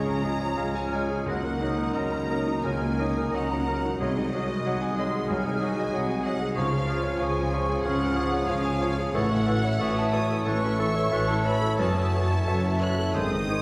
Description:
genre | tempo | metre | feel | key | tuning
classical | 85-96 BPM | 4/4 | rubato | Db major | A4 = 437 Hz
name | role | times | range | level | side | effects
bright concert grand piano | melody | 0.0-13.6 s | C2 to Bb5 | -31 LUFS | equal | none
warm symphonic violin section | melody | 0.0-13.6 s | Eb5 to F#6 | -40 LUFS | equal | none
clear clarinet | second line | 0.0-13.6 s | Ab4 to Bb4 | -41 LUFS | equal | none
clear studio violin section | second line | 0.0-13.6 s | Eb5 to F#6 | -40 LUFS | equal | none
silver concert flute | second line | 0.0-13.6 s | Bb5 to Gb6 | -40 LUFS | equal | none
warm oboe | second line | 0.0-13.6 s | B#4 to Ab5 | -40 LUFS | equal | none
warm bassoon | accompaniment | 0.0-13.6 s | D#3 to Ab3 | -38 LUFS | equal | none
warm symphonic viola section | accompaniment | 0.0-13.6 s | F3 to E5 | -39 LUFS | equal | none
bright trombone section | sustained chords | 0.0-13.6 s | Db3 to Ab3 | -38 LUFS | equal | none
mellow French horn section | sustained chords | 0.0-13.6 s | Ab3 to A4 | -38 LUFS | equal | none
rich studio cello section | bass | 0.0-13.6 s | F#2 to Db3 | -35 LUFS | equal | none
rich symphonic double bass section | bass | 0.0-13.6 s | F#1 to Db2 | -35 LUFS | equal | none
timpani | percussion | 13.1-13.6 s | G#2 | -37 LUFS | equal | none
room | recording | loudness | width
wet recital hall reverb, RT60 1.5 s | heard from further back in the room | -26 LUFS | mono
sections
0.0-13.6 A section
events
none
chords
0.0 Db; 1.3 Ebm7/Db; 4.0 Ab7/C; 6.6 Db; 9.1 A6; 11.8 F#m7

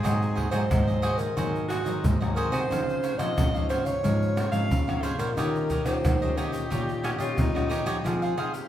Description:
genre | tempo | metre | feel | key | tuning
samba and choro | 90 BPM | 4/4 | straight | unclear | A4 = 440 Hz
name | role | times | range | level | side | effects
breathy alto saxophone | melody | 0.0-8.7 s | F4 to F5 | -31 LUFS | right 1 dB | none
cavaquinho | accompaniment | 0.0-8.6 s | Eb4 to F5 | -33 LUFS | right 2 dB | none
nylon-string guitar | accompaniment | 0.0-8.7 s | Ab2 to Ab4 | -33 LUFS | left 3 dB | none
nylon-string guitar | bass | 0.0-8.3 s | Ab2 to F3 | -29 LUFS | equal | none
tube shaker, surdo, pandeiro and tamborim | percussion | 0.0-8.7 s | none | -28 LUFS | equal | none
growling tenor saxophone | second line | 7.0-8.1 s | Db4 to G4 | -34 LUFS | equal | none
room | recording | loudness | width
wet large studio reverb, RT60 1.4 s | band playing live in one room | -24 LUFS | side -11 dB against mid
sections
0.0-8.1 A section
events
none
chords
0.0 Ab7; 2.7 Dbmaj9; 5.4 Eb9; 8.1 Fm7

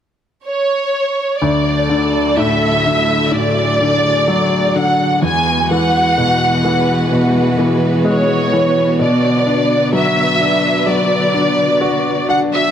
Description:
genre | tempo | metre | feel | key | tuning
pop | 64 BPM | 4/4 | straight | unclear | A4 = 440 Hz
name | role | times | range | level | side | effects
warm studio violin section | melody | 0.5-12.7 s | C#5 to G#5 | -16 LUFS | right 1 dB | none
clear baby grand piano | accompaniment | 1.4-12.7 s | D2 to F#4 | -16 LUFS | left 2 dB | none
warm studio string section | sustained chords | 1.4-12.7 s | D3 to B4 | -20 LUFS | right 3 dB | none
room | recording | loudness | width
moderate plate reverb, RT60 3.7 s | none | -12 LUFS | side -9 dB against mid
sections
0.0-1.4 A section; 1.4-12.7 B section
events
none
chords
0.0 N.C.; 1.4 D; 5.2 Eadd9; 9.0 Bm

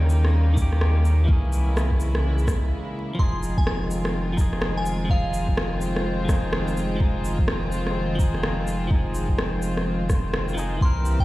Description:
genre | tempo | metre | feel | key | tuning
future garage | 126 BPM | 4/4 | swing 62% on 16ths | F minor | A4 = 439 Hz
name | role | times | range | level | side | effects
clean electric guitar | accompaniment | 0.0-11.2 s | Eb3 to Bb4 | -30 LUFS | left 1 dB | vintage 12-bit sampler grit, sidechain pumping, analog delay
warm studio string section | sustained chords | 0.0-11.2 s | Db3 to G4 | -31 LUFS | right 1 dB | vintage 12-bit sampler grit, sidechain pumping
soft dub sub bass | bass | 0.0-11.2 s | F1 to Eb2 | -24 LUFS | equal | sidechain pumping
drifting glass-harmonics texture | texture | 0.1-11.2 s | Bb4 to C5 | -40 LUFS | left 3 dB | chorus, built-in reverb
electronic shaker and rim click | drums | 0.1-11.2 s | none | -30 LUFS | equal | overdrive
electronic kick drum | drums | 0.6-11.2 s | none | -22 LUFS | equal | overdrive
glassy synth bell | melody | 3.2-5.8, 10.8-11.2 s | F5 to C6 | -34 LUFS | equal | chorus, vintage 12-bit sampler grit, analog delay
room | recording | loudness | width
digital ambience | played on a big sound system in a bare room, stone room reverb, vinyl crackle | -20 LUFS | side -18 dB against mid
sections
0.0-3.2 A section; 3.2-11.2 B section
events
break 2.7-3.2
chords
0.0 Eb7; 1.3 C7b9b13; 3.2 Fm7

